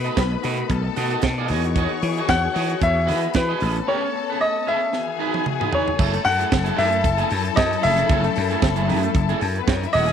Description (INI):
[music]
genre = disco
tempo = 114 BPM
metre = 4/4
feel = swing 56% on 16ths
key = F# dorian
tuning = A4 = 445 Hz
[part]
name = clear grand piano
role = melody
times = 0.0-10.1 s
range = B4 to F#5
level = -22 LUFS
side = left 1 dB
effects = none
[part]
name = bright studio violin section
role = second line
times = 0.0-10.1 s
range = B3 to C#6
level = -28 LUFS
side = left 12 dB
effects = none
[part]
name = electric guitar at the edge of break-up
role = accompaniment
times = 0.0-10.1 s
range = A3 to D#5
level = -28 LUFS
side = right 14 dB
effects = lush chorus
[part]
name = dark studio string section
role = sustained chords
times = 0.0-10.1 s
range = D#3 to A4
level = -28 LUFS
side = left 16 dB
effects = none
[part]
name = slap bass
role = bass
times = 0.0-10.1 s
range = D#1 to E3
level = -23 LUFS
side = equal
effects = none
[part]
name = tight funk drum kit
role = drums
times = 0.1-10.1 s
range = crash cymbal, hi-hat, kick drum, snare drum, toms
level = -25 LUFS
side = right 3 dB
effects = none
[sound]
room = light reverb, small room ambience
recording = 1960s-style stereo with parts hard left and right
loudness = -18 LUFS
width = side -8 dB against mid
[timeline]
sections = 0.0-6.0 A section; 6.0-10.1 B section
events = drum fill 4.9-6.0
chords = 0.0 B7; 1.5 Emaj9; 3.6 Amaj9; 4.9 Emaj7; 6.0 F#m9